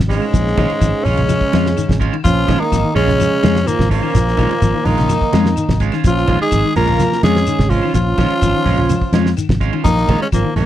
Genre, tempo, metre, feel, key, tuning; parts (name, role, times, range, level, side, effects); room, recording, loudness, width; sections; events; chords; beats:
afrobeat; 126 BPM; 4/4; straight; Bb minor; A4 = 439 Hz
clean electric guitar; arpeggios; 0.0-10.6 s; Db3 to Ab3; -22 LUFS; left 8 dB
fingered electric bass; bass; 0.0-10.7 s; Ab1 to F2; -17 LUFS; equal
damped 70s drum kit; drums; 0.0-10.7 s; hi-hat, kick drum, ride cymbal, snare drum; -20 LUFS; equal
raspy tenor saxophone; melody; 0.1-10.7 s; Ab3 to Bb4; -19 LUFS; left 3 dB
brilliant bass trombone; second line; 0.1-10.7 s; Ab2 to Bb3; -24 LUFS; right 12 dB
trombone with bucket mute; second line; 0.1-10.7 s; Db3 to F4; -24 LUFS; right 4 dB
electric guitar at the edge of break-up; stabs; 0.1-10.7 s; Ab3 to F4; -24 LUFS; right 11 dB
shekere; percussion; 0.1-10.7 s; -24 LUFS; left 2 dB
claves; percussion; 0.2-10.4 s; -40 LUFS; left 12 dB
congas; percussion; 0.3-10.7 s; -22 LUFS; right 3 dB
little or no reverb; dry, close 1970s-style studio recording; -13 LUFS; side -12 dB against mid
0.0-10.7 A section
0.0 Bbm7
| 0.34 0.81 1.29 1.77 | 2.24 2.72 3.19 3.67 | 4.14 4.62 5.09 5.57 | 6.04 6.52 7.00 7.47 | 7.95 8.42 8.90 9.38 | 9.85 10.33